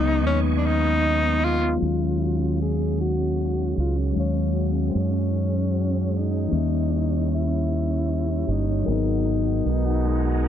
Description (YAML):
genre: R&B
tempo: 51 BPM (dotted quarters)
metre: 6/8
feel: straight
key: Eb minor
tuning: A4 = 440 Hz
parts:
  - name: breathy tenor saxophone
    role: melody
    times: 0.0-10.5 s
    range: C4 to Ab4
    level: -28 LUFS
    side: left 1 dB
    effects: none
  - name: electric guitar through a small old amp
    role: second line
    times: 0.0-10.5 s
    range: Db3 to Bb4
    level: -30 LUFS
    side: right 10 dB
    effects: none
  - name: barky tine electric piano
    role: accompaniment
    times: 0.0-10.5 s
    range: Fb3 to F5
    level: -27 LUFS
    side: left 15 dB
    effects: overdrive, auto-pan
  - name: tonewheel organ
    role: sustained chords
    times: 0.0-10.5 s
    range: G4 to Eb6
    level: -40 LUFS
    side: right 2 dB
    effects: chorus vibrato, fast rotary speaker
  - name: deep dub fingered electric bass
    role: bass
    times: 0.0-10.5 s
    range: G1 to Gb2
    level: -24 LUFS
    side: right 1 dB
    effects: none
room: little or no reverb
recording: dry, close 1970s-style studio recording, low-pass filter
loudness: -21 LUFS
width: side -10 dB against mid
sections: 0.0-1.8 A section; 1.8-10.5 B section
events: filter sweep 1.8-10.5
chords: 0.0 Db9sus4; 1.8 Ebm11; 6.5 Eb7b9; 8.9 Abm9